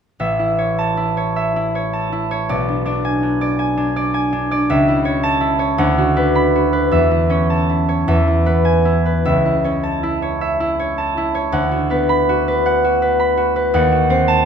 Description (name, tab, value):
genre	classical, solo harp piece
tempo	50-57 BPM (dotted quarters)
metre	6/8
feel	rubato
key	A major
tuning	A4 = 442 Hz
part	concert harp	solo	0.2-14.5 s	A1 to B5	-15 LUFS	equal	none
room	moderate recital hall reverb, RT60 1.5 s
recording	none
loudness	-15 LUFS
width	side -7 dB against mid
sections	0.2-14.5 A section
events	none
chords	0.2 A; 2.5 G#dim/B; 4.7 A/C#; 5.8 Bm/D; 6.9 A/E; 8.1 E; 9.3 A/C#; 11.5 Bm/D; 13.7 D#dim7